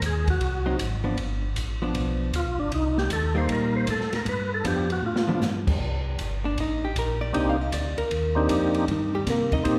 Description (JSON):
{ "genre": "soul jazz organ trio", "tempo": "156 BPM", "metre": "4/4", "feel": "swing 66% on 8ths", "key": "C dorian", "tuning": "A4 = 441 Hz", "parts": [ { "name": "percussive tonewheel organ", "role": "melody", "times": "0.0-9.8 s", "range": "Bb3 to C5", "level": "-29 LUFS", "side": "equal", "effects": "slow rotary speaker, overdrive, chorus vibrato" }, { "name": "mellow tonewheel organ", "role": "bass", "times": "0.0-9.8 s", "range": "G1 to C3", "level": "-30 LUFS", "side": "equal", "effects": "stopped rotary speaker" }, { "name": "open jazz drum kit", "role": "drums", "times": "0.0-9.8 s", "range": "crash cymbal, hi-hat, kick drum, ride cymbal, snare drum, toms", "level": "-33 LUFS", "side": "equal", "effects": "none" }, { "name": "hollow-body jazz guitar", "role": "accompaniment", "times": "0.7-9.8 s", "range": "Eb3 to F5", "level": "-32 LUFS", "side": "equal", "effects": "none" } ], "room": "wet concert hall reverb, RT60 1.9 s", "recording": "recorded in a church or concert hall", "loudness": "-26 LUFS", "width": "mono", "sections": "0.0-5.8 A section; 5.8-9.8 A section", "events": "tonewheel organ solo 0.0-5.8; drum fill 5.0-5.4; hollow-body jazz guitar solo 5.8-9.8", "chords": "0.0 Ab7; 1.2 G7; 2.7 Cm7; 4.3 G7; 5.8 Cm7" }